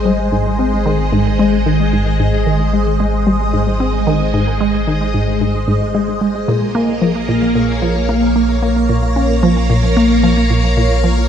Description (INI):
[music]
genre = ambient, sequencer-driven space music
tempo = 112 BPM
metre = 4/4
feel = straight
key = Ab major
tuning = A4 = 440 Hz
[part]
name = phased string machine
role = sustained chords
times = 0.0-11.3 s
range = Ab3 to Bb5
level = -17 LUFS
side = equal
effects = ensemble chorus, phaser
[part]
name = warm sub bass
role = bass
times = 0.0-11.3 s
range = Ab1 to Bb1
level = -18 LUFS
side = equal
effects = none
[part]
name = resonant blip pluck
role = riff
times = 0.1-11.2 s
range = Ab2 to Db4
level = -16 LUFS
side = equal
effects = chorus, tape echo
[sound]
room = wet concert hall reverb, RT60 2.2 s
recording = dark, warm production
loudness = -12 LUFS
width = side -9 dB against mid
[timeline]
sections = 0.0-11.3 A section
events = none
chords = 0.0 Ab; 6.5 Bbm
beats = | 0.05 0.59 1.12 1.66 | 2.20 2.73 3.27 3.80 | 4.34 4.88 5.41 5.95 | 6.48 7.02 7.55 8.09 | 8.62 9.16 9.70 10.23 | 10.77